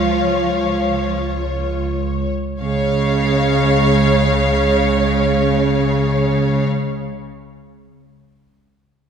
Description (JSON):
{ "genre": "classical, slow romantic movement for string orchestra", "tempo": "free time", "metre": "none", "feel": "none", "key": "Db major", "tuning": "A4 = 438 Hz", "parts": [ { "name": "clear symphonic violin section", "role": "melody", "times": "0.0-6.6 s", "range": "Db5 to F5", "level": "-24 LUFS", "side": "left 4 dB", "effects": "none" }, { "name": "rich studio violin section", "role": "second line", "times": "0.0-6.6 s", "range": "Db5 to F5", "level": "-24 LUFS", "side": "left 2 dB", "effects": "none" }, { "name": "rich studio viola section", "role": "accompaniment", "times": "0.0-6.6 s", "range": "Ab3 to Db5", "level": "-23 LUFS", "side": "right 2 dB", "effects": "none" }, { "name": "clear chamber cello section", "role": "bass", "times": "0.0-6.6 s", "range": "Db3 to F3", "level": "-19 LUFS", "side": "right 1 dB", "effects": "none" }, { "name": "clear chamber double bass section", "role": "bass", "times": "0.0-6.6 s", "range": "Db2", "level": "-21 LUFS", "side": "right 2 dB", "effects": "none" } ], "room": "wet concert hall reverb, RT60 2.2 s", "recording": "heard from further back in the room", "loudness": "-15 LUFS", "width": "side -7 dB against mid", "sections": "0.0-2.6 A section; 2.6-8.1 B section", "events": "slowing down 0.0-2.6", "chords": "0.0 Db" }